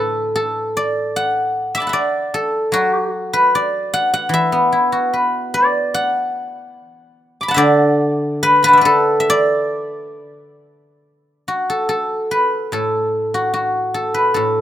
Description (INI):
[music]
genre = chinese traditional, Chinese solo plucked strings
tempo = 66-78 BPM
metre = 4/4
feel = rubato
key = D gong mode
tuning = A4 = 439 Hz
[part]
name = guzheng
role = solo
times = 0.0-14.6 s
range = A2 to D6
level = -15 LUFS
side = equal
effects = none
[sound]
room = small room ambience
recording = rough home demo mix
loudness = -15 LUFS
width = side -11 dB against mid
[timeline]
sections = 0.0-11.0 A section; 11.0-14.6 B section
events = none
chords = none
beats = 0.34 | 1.14 1.94 2.74 3.53 | 4.32 5.13 5.94 6.77 | 7.59 8.42 9.28 10.18 | 11.05 11.89 12.73 13.55 | 14.36